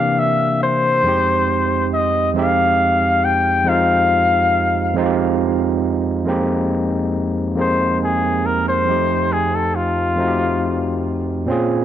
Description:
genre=R&B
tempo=46 BPM (dotted quarters)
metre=6/8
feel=straight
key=F dorian, F minor from 6.3 s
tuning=A4 = 441 Hz
part: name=warm flugelhorn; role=melody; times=0.0-11.0 s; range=F4 to G5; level=-17 LUFS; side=left 2 dB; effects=tape echo
part: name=overdriven tine electric piano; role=accompaniment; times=0.0-11.8 s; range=F2 to Ab4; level=-18 LUFS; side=moving between left 3 dB and right 6 dB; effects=auto-pan
room=moderate echo chamber reverb, RT60 1.7 s, small room ambience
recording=none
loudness=-15 LUFS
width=side -10 dB against mid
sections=0.0-6.3 A section; 6.3-11.8 B section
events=flugelhorn solo 6.3-11.8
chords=0.0 C7; 1.0 Fm9; 6.3 Fm11; 8.9 F7

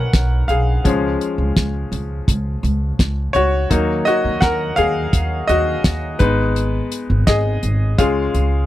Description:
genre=piano-driven pop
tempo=84 BPM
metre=4/4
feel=straight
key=unclear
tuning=A4 = 440 Hz
part: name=bright grand piano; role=accompaniment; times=0.0-8.7 s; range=F3 to Bb5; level=-19 LUFS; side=left 2 dB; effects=none
part: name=upright bass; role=bass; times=0.0-8.6 s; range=Ab1 to Eb2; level=-19 LUFS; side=equal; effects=none
part: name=damped 70s drum kit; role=drums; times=0.1-8.5 s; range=hi-hat, kick drum, snare drum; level=-16 LUFS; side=equal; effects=none
room=little or no reverb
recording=dry, close 1970s-style studio recording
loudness=-15 LUFS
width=side -14 dB against mid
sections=0.0-8.7 A section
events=grand piano solo 0.0-8.7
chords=0.0 B; 0.8 Db; 3.7 Ebm; 6.2 Abm; 8.0 Db

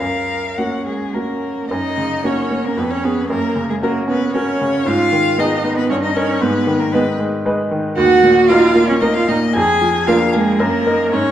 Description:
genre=quick classical-period movement for piano trio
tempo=115 BPM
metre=3/4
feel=rubato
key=F# major, Eb minor from 8.0 s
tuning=A4 = 439 Hz
part: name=rich violin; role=melody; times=0.0-11.3 s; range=Ab4 to Ab5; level=-22 LUFS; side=left 6 dB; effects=none
part: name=rich cello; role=second line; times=0.0-11.3 s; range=G#3 to A#4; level=-17 LUFS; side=right 3 dB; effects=none
part: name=bright baby grand piano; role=accompaniment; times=0.0-11.3 s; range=Eb2 to B4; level=-18 LUFS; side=equal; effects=none
room=wet recital hall reverb, RT60 1.8 s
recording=dark, warm production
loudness=-14 LUFS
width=side -11 dB against mid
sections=0.0-1.7 A section; 1.7-11.3 B section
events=none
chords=0.0 F#; 2.8 C#7/E#; 3.3 F#; 4.9 G#m; 5.9 D#7/G; 6.4 G#m; 8.0 Ebm; 9.5 Bb7/F; 10.6 Ebm/Gb

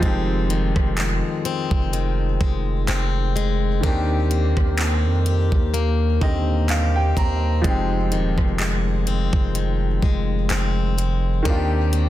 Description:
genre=contemporary R&B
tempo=63 BPM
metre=4/4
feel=swing 54% on 16ths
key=F dorian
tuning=A4 = 439 Hz
part: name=clear grand piano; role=accompaniment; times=0.0-12.1 s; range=D3 to Bb5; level=-27 LUFS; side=right 1 dB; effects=none
part: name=picked plugged-in swing-style acoustic guitar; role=arpeggios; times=0.0-12.1 s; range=F2 to G4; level=-26 LUFS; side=left 9 dB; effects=ping-pong delay
part: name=long sustained 808-style bass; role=bass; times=0.0-12.1 s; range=Eb1 to F2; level=-21 LUFS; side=right 1 dB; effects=none
part: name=smooth R&B drum kit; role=drums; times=0.0-12.1 s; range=handclaps, hi-hat, kick drum, rim click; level=-23 LUFS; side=right 1 dB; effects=none
room=digital ambience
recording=dense, heavily limited modern master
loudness=-18 LUFS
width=side -14 dB against mid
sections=0.0-12.1 A section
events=grand piano fill 5.7-7.6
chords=0.0 Fm7; 3.8 Cm7/Eb; 7.6 Fm7; 11.5 Cm7/Eb

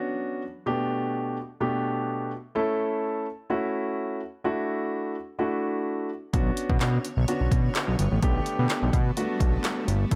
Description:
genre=dance-pop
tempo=127 BPM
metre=4/4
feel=straight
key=unclear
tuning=A4 = 440 Hz
part: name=warm concert grand piano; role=accompaniment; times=0.0-10.2 s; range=B2 to A4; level=-30 LUFS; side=equal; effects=sidechain pumping
part: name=granular cloud pad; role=sustained chords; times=6.9-10.2 s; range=D3 to C#5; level=-38 LUFS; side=equal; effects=built-in reverb, sidechain pumping
part: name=fat analog bass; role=bass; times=6.3-10.2 s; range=G1 to B2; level=-27 LUFS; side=equal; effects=sidechain pumping
part: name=deep house drum kit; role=drums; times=6.3-10.2 s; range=handclaps, hi-hat, kick drum, snare drum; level=-28 LUFS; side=equal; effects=none
room=digital ambience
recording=none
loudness=-27 LUFS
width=mono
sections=0.0-10.2 A section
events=none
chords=0.0 Bmadd9; 0.7 Gadd9/B; 2.6 A; 4.4 Dadd9/A; 6.3 Bmadd9; 8.2 Gadd9/B

